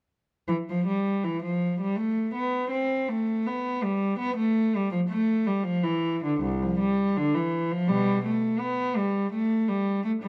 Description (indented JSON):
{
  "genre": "classical, baroque-style suite movement for unaccompanied cello",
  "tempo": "82 BPM",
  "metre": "4/4",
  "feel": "rubato",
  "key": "unclear",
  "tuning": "A4 = 444 Hz",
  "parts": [
    { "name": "rich cello", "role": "solo", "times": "0.5-10.3 s", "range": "C2 to C4", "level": "-26 LUFS", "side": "equal", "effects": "none" }
  ],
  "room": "light reverb",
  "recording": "close, detailed microphones",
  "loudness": "-27 LUFS",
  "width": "mono",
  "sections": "0.5-10.3 A section",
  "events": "none",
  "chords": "none"
}